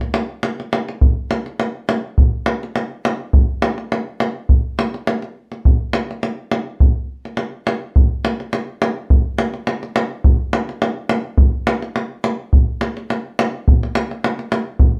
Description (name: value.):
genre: balkan folk.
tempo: 104 BPM.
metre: 2/4.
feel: swing 54% on 16ths.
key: none.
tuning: none.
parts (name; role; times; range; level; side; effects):
davul; percussion; 0.0-14.9 s; none; -18 LUFS; equal; none.
room: moderate studio reverb, RT60 0.6 s.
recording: dark, warm production.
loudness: -19 LUFS.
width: mono.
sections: 0.0-1.0 A section; 1.0-15.0 B section.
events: none.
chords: none.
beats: 0.43 | 1.01 1.59 | 2.18 2.76 | 3.34 3.92 | 4.50 5.08 | 5.65 6.23 | 6.81 7.38 | 7.96 8.53 | 9.10 9.68 | 10.25 10.82 | 11.39 11.96 | 12.53 13.10 | 13.66 14.23 | 14.80.